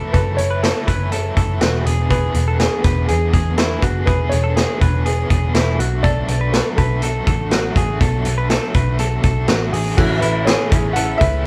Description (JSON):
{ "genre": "jangly indie pop", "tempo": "122 BPM", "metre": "4/4", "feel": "straight", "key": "A major", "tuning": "A4 = 440 Hz", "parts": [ { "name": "warm upright piano", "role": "melody", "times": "0.0-11.5 s", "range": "G#4 to F#5", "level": "-27 LUFS", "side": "equal", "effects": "none" }, { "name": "crunchy overdriven guitar", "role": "accompaniment", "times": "0.0-11.4 s", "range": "F#2 to G#4", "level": "-28 LUFS", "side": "equal", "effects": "tremolo" }, { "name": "direct-recorded clean electric guitar", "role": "arpeggios", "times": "0.0-11.5 s", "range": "E4 to B4", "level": "-27 LUFS", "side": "equal", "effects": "none" }, { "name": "vintage muted picked electric bass", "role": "bass", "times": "0.0-11.5 s", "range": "E1 to E2", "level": "-22 LUFS", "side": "equal", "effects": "none" }, { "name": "vintage drum kit", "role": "drums", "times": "0.1-11.3 s", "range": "crash cymbal, hi-hat, kick drum, snare drum", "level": "-21 LUFS", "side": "equal", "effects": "none" }, { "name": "warm analog keys", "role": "accompaniment", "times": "10.0-11.5 s", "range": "C#4 to A4", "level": "-27 LUFS", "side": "equal", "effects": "chorus" } ], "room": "moderate studio reverb, RT60 0.5 s", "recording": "band playing live in one room", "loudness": "-17 LUFS", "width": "mono", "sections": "0.0-10.0 A section; 10.0-11.5 B section", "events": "none", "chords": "0.0 F#m7; 1.9 E7; 5.8 Bm7; 10.0 A" }